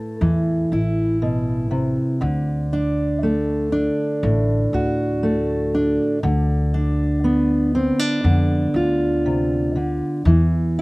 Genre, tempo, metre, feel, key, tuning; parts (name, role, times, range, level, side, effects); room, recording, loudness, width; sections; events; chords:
folk; 60 BPM; 4/4; straight; A4 = 440 Hz
fingerpicked steel-string acoustic guitar; accompaniment; 0.0-10.8 s; A2 to B4; -19 LUFS; equal
upright bass; bass; 0.2-10.8 s; A1 to F2; -23 LUFS; equal
little or no reverb; recorded outdoors, with no room sound; -18 LUFS; side -23 dB against mid
0.0-10.8 A section
0.0 Amadd9; 2.2 D; 6.2 Bdim/D; 10.3 N.C.